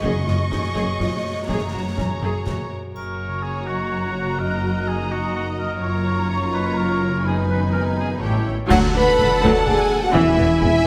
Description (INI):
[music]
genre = cinematic, heroic adventure film score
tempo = 125 BPM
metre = 3/4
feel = straight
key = F# major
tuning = A4 = 440 Hz
[part]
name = warm symphonic violin section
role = melody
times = 0.0-10.9 s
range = E5 to C#6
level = -33 LUFS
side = equal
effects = none
[part]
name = warm symphonic violin section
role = second line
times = 0.0-10.9 s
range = B4 to A5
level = -32 LUFS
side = equal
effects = none
[part]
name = rich symphonic viola section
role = accompaniment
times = 0.0-10.9 s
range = E3 to A4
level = -30 LUFS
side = equal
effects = none
[part]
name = concert harp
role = arpeggios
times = 0.0-10.9 s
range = F#2 to F#5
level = -31 LUFS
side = equal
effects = none
[part]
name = rich symphonic cello section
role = bass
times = 0.0-10.7 s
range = D2 to A2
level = -29 LUFS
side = equal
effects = none
[part]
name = warm studio double bass section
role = bass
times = 0.0-10.7 s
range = E1 to D2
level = -29 LUFS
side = equal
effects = none
[part]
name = concert bass drum, concert snare drum and clash cymbals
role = drums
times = 0.0-2.6, 8.7-10.8 s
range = none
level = -32 LUFS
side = equal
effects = none
[part]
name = timpani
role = percussion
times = 0.0-0.7, 10.1-10.8 s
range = E2 to F#2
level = -30 LUFS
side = equal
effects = none
[part]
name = mellow hollow flute section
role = second line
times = 2.9-10.9 s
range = E5 to F#6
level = -31 LUFS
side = equal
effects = none
[part]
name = warm oboe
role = second line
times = 3.0-8.5 s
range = F#4 to C#5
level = -31 LUFS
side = equal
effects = none
[part]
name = mellow French horn section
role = sustained chords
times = 3.0-10.9 s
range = G3 to B4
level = -26 LUFS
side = equal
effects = none
[part]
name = triangle, cymbal swell, clash cymbals and concert bass drum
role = percussion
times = 3.0-9.6 s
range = none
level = -30 LUFS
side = equal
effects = none
[sound]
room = wet scoring stage reverb, RT60 1.8 s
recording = none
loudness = -21 LUFS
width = mono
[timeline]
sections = 0.0-2.9 A section; 2.9-8.7 B section; 8.7-10.9 C section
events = band accent 8.7-9.2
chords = 0.0 C#sus2/F#; 1.5 F#add9; 2.9 F#; 4.4 D#m/F#; 5.8 A#m/F#; 7.2 G#m/F#; 8.2 A7; 8.7 D; 10.1 E